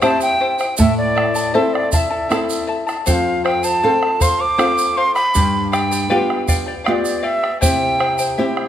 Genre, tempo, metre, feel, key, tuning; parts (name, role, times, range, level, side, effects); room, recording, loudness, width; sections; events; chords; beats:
andean folk, Andean ensemble; 79 BPM; 3/4; straight; A minor; A4 = 444 Hz
reedy quena; melody; 0.0-8.3 s; D5 to D6; -19 LUFS; equal; tape echo
charango; accompaniment; 0.0-8.7 s; E4 to A5; -23 LUFS; left 4 dB
flamenco guitar; accompaniment; 0.0-8.7 s; F2 to A4; -20 LUFS; equal
bombo; percussion; 0.0-8.7 s; -22 LUFS; right 2 dB
tube shaker; percussion; 0.0-8.4 s; -28 LUFS; right 5 dB
moderate scoring stage reverb, RT60 1.9 s; -15 LUFS; side -10 dB against mid
0.0-8.7 A section
0.0 C; 0.8 Am; 3.1 F; 5.3 G7; 7.6 C
0.02 | 0.79 1.55 2.31 | 3.07 3.83 4.59 | 5.35 6.11 6.87 | 7.63 8.38